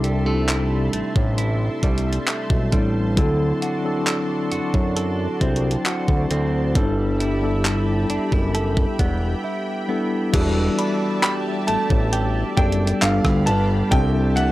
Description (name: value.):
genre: contemporary R&B.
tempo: 67 BPM.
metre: 4/4.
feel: straight.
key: E minor.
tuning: A4 = 438 Hz.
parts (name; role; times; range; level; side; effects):
mellow tine electric piano; accompaniment; 0.0-14.5 s; F#3 to C5; -24 LUFS; left 2 dB; medium stereo tremolo.
lush unison pad; sustained chords; 0.0-14.5 s; G3 to C6; -31 LUFS; equal; chorus.
direct-recorded clean electric guitar; arpeggios; 0.0-14.5 s; G2 to A4; -27 LUFS; right 3 dB; phaser, analog delay.
fat analog bass; bass; 0.0-14.5 s; E1 to F#2; -22 LUFS; equal; none.
crisp 8-bit digital drum machine; drums; 0.0-14.5 s; crash cymbal, handclaps, hi-hat, kick drum, rim click; -22 LUFS; equal; none.
glassy synth bell; texture; 10.8-12.1 s; B5; -36 LUFS; left 3 dB; chorus.
clear baby grand piano; melody; 11.2-14.5 s; F5 to B5; -25 LUFS; right 1 dB; none.
room: digital ambience.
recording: dry, gritty hardware recording.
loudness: -18 LUFS.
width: side -16 dB against mid.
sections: 0.0-10.3 A section; 10.3-14.5 B section.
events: break 9.4-10.3.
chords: 0.0 C6; 3.2 D7; 6.8 Em11; 13.0 G7; 13.9 C6.